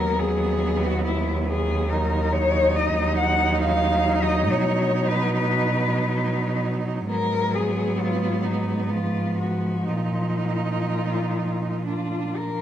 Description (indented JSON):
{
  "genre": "classical, lyrical piece for cello ensemble",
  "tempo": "59-72 BPM",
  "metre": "3/4",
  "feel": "rubato",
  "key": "Eb minor",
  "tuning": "A4 = 440 Hz",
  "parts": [
    { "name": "warm cello", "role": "melody", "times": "0.0-12.6 s", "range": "Eb4 to Gb5", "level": "-26 LUFS", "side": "left 4 dB", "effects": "none" },
    { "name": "rich cello", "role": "second line", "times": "0.0-12.6 s", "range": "B3 to Eb4", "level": "-29 LUFS", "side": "right 7 dB", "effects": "none" },
    { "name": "rich cello", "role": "accompaniment", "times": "0.0-12.6 s", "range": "F3 to F#3", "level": "-28 LUFS", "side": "left 2 dB", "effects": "none" },
    { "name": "warm cello", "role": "bass", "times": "0.0-12.6 s", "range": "D#2 to B2", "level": "-26 LUFS", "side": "right 2 dB", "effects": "none" }
  ],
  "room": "moderate recital hall reverb, RT60 1.3 s",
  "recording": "none",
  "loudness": "-21 LUFS",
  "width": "side -10 dB against mid",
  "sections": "0.0-12.6 A section",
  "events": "none",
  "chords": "0.0 B/D#; 4.5 B; 7.1 Abm7; 8.9 Fdim/Ab; 9.9 Bbsus4"
}